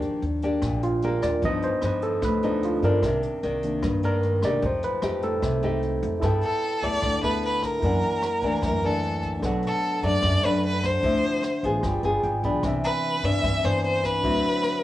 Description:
bossa nova; 150 BPM; 4/4; straight; G major; A4 = 440 Hz
barky tine electric piano; accompaniment; 0.0-14.8 s; Eb3 to B5; -28 LUFS; right 1 dB; cassette tape, plate reverb
nylon-string guitar; accompaniment; 0.0-14.8 s; F#2 to A4; -28 LUFS; left 2 dB; cassette tape, plate reverb
jazz brush drum kit; drums; 0.0-14.7 s; hi-hat, kick drum, rim click; -34 LUFS; equal; cassette tape
upright bass; bass; 0.2-14.4 s; G1 to G2; -28 LUFS; equal
bright violin; melody; 6.4-14.8 s; A4 to E5; -25 LUFS; equal; cassette tape, plate reverb
moderate studio ambience, RT60 0.5 s; home recording on cassette; -22 LUFS; side -14 dB against mid
0.0-6.2 A section; 6.2-14.8 B section
tine electric piano solo 0.0-6.2; tine electric piano fill 11.8-12.6
0.0 Ebmaj7; 1.4 G7b13; 3.0 Cm9; 4.6 F9; 6.2 G69; 7.8 F#7alt; 9.4 Bm7; 11.0 Dm9; 11.8 G7b9; 12.6 Cmaj9; 14.2 D9

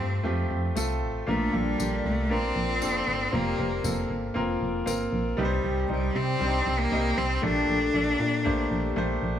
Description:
piano-driven pop; 117 BPM; 4/4; straight; A4 = 440 Hz
bright cello; melody; 0.0-9.2 s; G3 to D4; -28 LUFS; left 1 dB
bright concert grand piano; accompaniment; 0.0-9.4 s; G2 to Eb5; -29 LUFS; right 1 dB
solid FM bass; bass; 0.0-9.4 s; F1 to C3; -29 LUFS; equal
tambourine; percussion; 0.8-5.0 s; -39 LUFS; left 7 dB
dark French horn section; second line; 1.3-9.2 s; D3 to A4; -36 LUFS; left 8 dB
light reverb, small room ambience; -24 LUFS; side -10 dB against mid
0.0-5.4 A section; 5.4-9.4 B section
0.0 F; 1.3 Bb; 3.3 Fsus4; 5.4 Cm; 7.4 Gmadd9/Bb

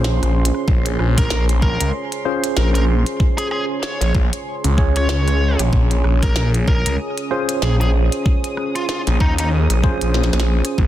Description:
glitch hop; 95 BPM; 4/4; swing 58% on 16ths; Bb minor; A4 = 441 Hz
dark analog pad; sustained chords; 0.0-10.9 s; Db4 to Eb6; -28 LUFS; right 2 dB; chorus, vintage 12-bit sampler grit, sidechain pumping
tine electric piano; stabs; 0.0-10.9 s; Db4 to Db5; -24 LUFS; right 1 dB; medium stereo tremolo, sidechain pumping, digital delay
phased detuned saw bass; bass; 0.0-10.9 s; Bb1 to Eb2; -17 LUFS; equal; phaser, overdrive
glitchy drum kit; drums; 0.0-10.8 s; hi-hat, rim click, snare drum; -26 LUFS; equal; studio reverb, soft clipping on snare
electronic kick drum; drums; 0.7-10.9 s; -17 LUFS; equal; overdrive, studio reverb
biting lead guitar; melody; 1.2-9.5 s; Eb4 to Db5; -26 LUFS; equal; overdrive, vintage 12-bit sampler grit, digital delay
little or no reverb; dense, heavily limited modern master; -15 LUFS; side -13 dB against mid
0.0-10.9 A section
0.0 Bbm9

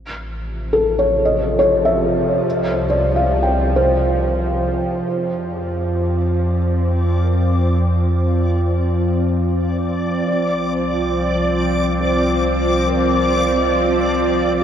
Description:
ambient; 69 BPM; 3/4; straight; A4 = 439 Hz
warm sub bass; bass; 0.0-14.6 s; A1 to F2; -21 LUFS; equal
bowed-like drone; drone; 0.5-14.6 s; C3 to C4; -20 LUFS; right 1 dB; built-in reverb
felt-muted upright piano; arpeggios; 0.7-14.6 s; Ab4 to G5; -21 LUFS; left 1 dB; diffuse ambient delay, shimmer reverb
backwards swelling texture; texture; 6.6-14.6 s; D5 to D6; -23 LUFS; left 1 dB; built-in reverb, shimmer reverb
wet huge ambient reverb, RT60 8.1 s; worn, warbling old tape, cassette tape, warbly pitch drift; -16 LUFS; side -9 dB against mid
0.0-5.1 A section; 5.1-14.6 B section
0.0 A5; 2.4 Csus4; 5.1 Fm; 10.3 Cm7

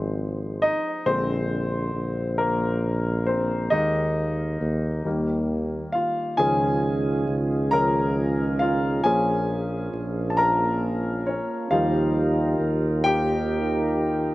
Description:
six-eight pop ballad; 45 BPM (dotted quarters); 6/8; straight; A4 = 440 Hz
warm grand piano; accompaniment; 0.0-14.3 s; D3 to Bb5; -24 LUFS; left 1 dB
mellow tuba; bass; 0.0-14.3 s; Ab1 to Eb2; -26 LUFS; equal
mellow tonewheel organ; sustained chords; 6.4-14.3 s; Db3 to Bb4; -26 LUFS; right 2 dB; slow rotary speaker
little or no reverb; recorded outdoors, with no room sound; -21 LUFS; side -17 dB against mid
0.0-14.3 A section
grand piano solo 0.0-14.3
0.0 Fm/Ab; 1.1 Bb7; 3.7 Ebsus4; 5.1 Eb; 6.4 Dbadd9; 9.1 Bbm; 11.7 Ebadd9

